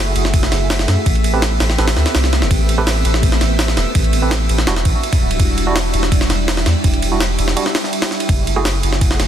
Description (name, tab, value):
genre	drum and bass, jungle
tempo	166 BPM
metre	4/4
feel	straight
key	unclear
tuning	A4 = 440 Hz
part	soft string machine	sustained chords	0.0-9.3 s	G3 to G#4	-22 LUFS	equal	ensemble chorus
part	soft dub sub bass	bass	0.0-9.3 s	D1 to F#2	-18 LUFS	equal	tube saturation
part	drifting glass-harmonics texture	texture	0.0-9.3 s	E5 to F#6	-27 LUFS	right 2 dB	chorus, built-in reverb
part	jungle sampler-style drum kit	drums	0.2-9.3 s	kick drum, ride cymbal, snare drum	-17 LUFS	equal	none
part	barky tine electric piano	stabs	1.3-8.7 s	G3 to B4	-24 LUFS	right 4 dB	overdrive, fast tremolo, vintage 12-bit sampler grit, dub echo
room	light reverb, digital ambience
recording	dense, heavily limited modern master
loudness	-13 LUFS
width	side -10 dB against mid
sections	0.0-9.3 A section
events	none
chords	0.0 F#m9; 1.1 Am9; 4.7 Em9; 8.3 F#m9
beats	0.34 0.70 | 1.06 1.42 1.78 2.15 | 2.51 2.87 3.23 3.59 | 3.95 4.31 4.67 5.04 | 5.40 5.76 6.12 6.48 | 6.84 7.21 7.57 7.93 | 8.29 8.65 9.01